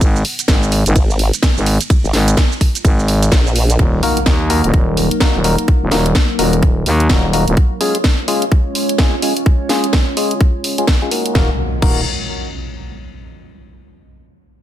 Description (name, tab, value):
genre	bass house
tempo	127 BPM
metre	4/4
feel	swing 60% on 16ths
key	Eb minor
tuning	A4 = 439 Hz
part	dark analog pad	sustained chords	1.2-11.6 s	Gb3 to Db5	-25 LUFS	right 1 dB	chorus, phaser, sidechain pumping
part	growling FM bass	bass	0.0-7.6, 11.4-12.0 s	Eb1 to Eb2	-15 LUFS	equal	sidechain pumping
part	electronic kick drum	drums	0.0-11.9 s	none	-13 LUFS	equal	studio ambience
part	garage drum kit	drums	0.0-11.9 s	crash cymbal, hi-hat, ride cymbal, shaker, snare drum	-20 LUFS	right 1 dB	studio ambience
part	formant-sweep wobble bass	bass	1.0-3.8 s	Ab1 to Bb1	-14 LUFS	equal	chorus, sidechain pumping
part	impact	sound effects	3.8-5.7, 11.5-13.2 s	none	-25 LUFS	equal	none
part	percussive organ stab	stabs	4.0-12.0 s	Ab3 to Bb4	-20 LUFS	left 3 dB	chorus, cassette tape, sidechain pumping, digital delay
room	digital ambience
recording	dense, heavily limited modern master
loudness	-12 LUFS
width	side -12 dB against mid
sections	0.0-3.8 A section; 3.8-11.3 B section; 11.3-13.2 C section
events	drop 0.0-3.8; impact 3.8-5.7; filter sweep on synth stab 3.8-11.3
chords	0.0 Abm; 3.8 Ebm; 7.6 Db; 11.3 Ebm